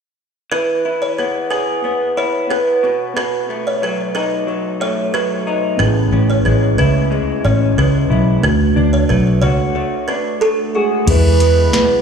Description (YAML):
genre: indie pop, bedroom pop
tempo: 91 BPM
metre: 4/4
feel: straight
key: E major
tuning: A4 = 439 Hz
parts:
  - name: buzzing kalimba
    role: second line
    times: 0.5-10.9 s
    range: A4 to C#5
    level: -21 LUFS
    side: right 2 dB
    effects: ensemble chorus, slapback echo, ping-pong delay
  - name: electric guitar through a small old amp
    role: accompaniment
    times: 0.5-12.0 s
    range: A2 to G#4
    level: -19 LUFS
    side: left 2 dB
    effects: lush chorus, warbly pitch drift, slapback echo
  - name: mellow tine electric piano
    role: accompaniment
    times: 5.8-12.0 s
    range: G#3 to G#4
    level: -21 LUFS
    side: right 6 dB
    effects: slapback echo
  - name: vintage muted fingered electric bass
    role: bass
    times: 5.8-12.0 s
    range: A1 to E2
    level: -14 LUFS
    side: equal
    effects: none
  - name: soft octave-layered synth lead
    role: melody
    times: 10.8-12.0 s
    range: G#4 to B4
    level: -15 LUFS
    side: right 3 dB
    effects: analog chorus, slapback echo
  - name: soft vintage rhythm box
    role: drums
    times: 11.1-11.9 s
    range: crash cymbal, hi-hat, kick drum, snare drum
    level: -17 LUFS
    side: left 1 dB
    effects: none
room: light reverb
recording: live gig heard through the venue's PA, club reverb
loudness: -14 LUFS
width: side -6 dB against mid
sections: 0.5-11.1 A section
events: break 9.8-11.1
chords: 0.5 E; 2.8 B7; 5.8 Amaj7; 8.4 D; 11.1 E